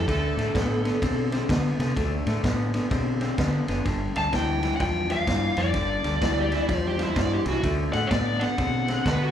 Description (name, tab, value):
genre	electric blues shuffle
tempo	127 BPM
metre	4/4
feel	swing 63% on 8ths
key	D mixolydian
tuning	A4 = 438 Hz
part	overdriven slide guitar	second line	0.0-1.5, 6.2-9.3 s	E4 to D5	-30 LUFS	right 4 dB	plate reverb, slapback echo
part	electric guitar through a small old amp	riff	0.0-9.3 s	G2 to C4	-27 LUFS	left 2 dB	spring reverb, slapback echo
part	deep dub fingered electric bass	bass	0.0-9.3 s	F#1 to D3	-28 LUFS	equal	none
part	vintage drum kit	drums	0.1-9.2 s	kick drum, ride cymbal, snare drum	-30 LUFS	right 1 dB	none
part	lead guitar through a small cranked amp	melody	4.2-9.3 s	C#5 to A5	-28 LUFS	left 1 dB	overdrive, plate reverb
room	light reverb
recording	live gig heard through the venue's PA, club reverb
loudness	-22 LUFS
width	side -9 dB against mid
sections	0.0-9.3 A section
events	none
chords	0.1 D5; 3.9 G5; 7.6 D6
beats	| 0.08 0.55 1.02 1.49 | 1.96 2.44 2.91 3.38 | 3.85 4.32 4.80 5.27 | 5.74 6.21 6.69 7.16 | 7.63 8.11 8.58 9.05